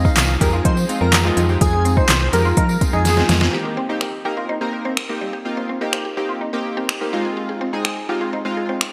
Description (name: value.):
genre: dance-pop.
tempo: 125 BPM.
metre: 4/4.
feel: straight.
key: Eb major.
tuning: A4 = 440 Hz.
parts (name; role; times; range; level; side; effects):
airy dreamy lead; melody; 0.0-3.1 s; Ab4 to F5; -25 LUFS; equal; chorus, digital delay.
chorused retro synth keys; accompaniment; 0.0-8.8 s; Ab3 to Bb4; -26 LUFS; equal; sidechain pumping.
soft supersaw; sustained chords; 0.0-3.5 s; F3 to Ab4; -34 LUFS; equal; none.
electric guitar through a small old amp; riff; 0.0-8.8 s; G3 to G4; -30 LUFS; equal; analog chorus.
solid FM bass; bass; 0.0-3.5 s; C2 to F3; -21 LUFS; equal; sidechain pumping.
smooth R&B drum kit; drums; 0.0-8.9 s; finger snaps, handclaps, hi-hat, kick drum, snare drum; -22 LUFS; equal; overdrive, gated reverb.
tambourine; percussion; 0.1-3.4 s; none; -34 LUFS; equal; none.
mallet-like synth pluck; arpeggios; 3.5-8.8 s; F4 to C5; -34 LUFS; equal; chorus, phaser, sidechain pumping, digital delay.
room: moderate plate reverb, RT60 2.1 s.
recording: bright 1980s-style digital production.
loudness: -19 LUFS.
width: mono.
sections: 0.0-3.5 A section; 3.5-8.9 B section.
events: drum fill 3.1-3.5.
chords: 0.0 Fm7; 3.5 Eb6; 7.1 Fm7.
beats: 0.17 0.65 1.13 | 1.61 2.09 2.57 3.05 | 3.53 4.01 4.49 4.97 | 5.45 5.93 6.41 6.89 | 7.37 7.85 8.33 8.81.